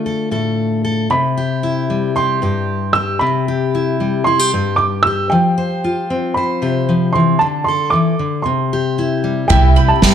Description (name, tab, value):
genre	indie folk with a building arrangement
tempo	114 BPM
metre	4/4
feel	straight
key	C major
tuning	A4 = 441 Hz
part	fingerpicked steel-string acoustic guitar	accompaniment	0.0-10.1 s	G2 to C5	-16 LUFS	left 3 dB	none
part	dark upright piano	melody	1.1-10.1 s	G5 to E6	-18 LUFS	right 3 dB	none
part	picked twelve-string acoustic guitar	accompaniment	9.5-10.1 s	C3 to G4	-22 LUFS	left 4 dB	ensemble chorus
part	bowl-back mandolin	arpeggios	9.5-10.1 s	E5 to C6	-20 LUFS	right 8 dB	none
part	fingered electric bass	bass	9.5-10.1 s	C2 to G2	-14 LUFS	equal	none
part	unplugged drum kit	drums	9.5-10.1 s	kick drum, snare drum, toms	-12 LUFS	right 2 dB	none
room	moderate large studio reverb, RT60 1.1 s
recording	dark, warm production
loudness	-14 LUFS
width	side -8 dB against mid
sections	0.0-9.5 A section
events	drum fill 9.5-10.1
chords	0.0 Dm; 1.1 Cmaj7; 5.3 Fsus2; 7.4 D5; 8.5 C; 9.5 Cmaj7